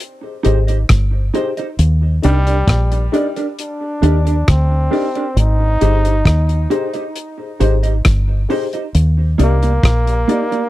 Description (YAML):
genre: roots reggae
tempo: 67 BPM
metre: 4/4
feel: straight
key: Eb major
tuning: A4 = 442 Hz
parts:
  - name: damped 70s drum kit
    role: drums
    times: 0.0-10.7 s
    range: hi-hat, kick drum, rim click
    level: -16 LUFS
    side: equal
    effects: none
  - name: dark upright piano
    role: stabs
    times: 0.2-10.4 s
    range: Eb4 to D5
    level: -22 LUFS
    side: left 7 dB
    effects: none
  - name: mellow electric guitar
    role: accompaniment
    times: 0.4-10.6 s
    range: Bb3 to Eb5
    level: -21 LUFS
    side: right 5 dB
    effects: lush chorus, tape echo
  - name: deep dub fingered electric bass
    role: bass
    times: 0.5-10.2 s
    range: G1 to Eb2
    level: -14 LUFS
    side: equal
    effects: none
  - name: bright trombone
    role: melody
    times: 2.2-10.7 s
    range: G3 to Eb4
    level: -22 LUFS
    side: equal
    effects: tape echo
room: studio reverb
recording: dry, close 1970s-style studio recording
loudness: -13 LUFS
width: side -16 dB against mid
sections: 0.0-10.7 A section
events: none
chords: 0.0 Abmaj7; 1.8 Ebmaj7; 5.4 Abmaj7; 8.9 Ebmaj7